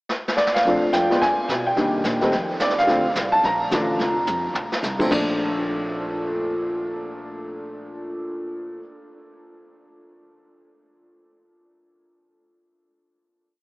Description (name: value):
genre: jazz piano trio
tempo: 216 BPM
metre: 4/4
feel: swing 60% on 8ths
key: Bb major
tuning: A4 = 440 Hz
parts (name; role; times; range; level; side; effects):
- vintage brush drum kit; drums; 0.1-5.2 s; brushed snare drum, crash cymbal, hi-hat, kick drum, snare drum, toms; -27 LUFS; equal; none
- warm upright piano; melody; 0.4-8.8 s; Bb2 to Bb5; -21 LUFS; equal; lush chorus, analog delay
- upright bass; bass; 0.7-8.8 s; F1 to C3; -34 LUFS; equal; none
room: wet huge ambient reverb, RT60 7.4 s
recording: dreamy mix soaked in reverb, AM radio sound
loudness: -20 LUFS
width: side -22 dB against mid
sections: 0.0-0.7 pickup bar; 0.7-5.1 A section; 5.1-7.3 final chord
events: drum fill 0.1-0.7, 4.3-4.8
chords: 0.0 N.C.; 0.7 Bbmaj7; 1.2 G; 1.8 Cm7; 2.3 Ebsus2; 2.9 Bbmaj7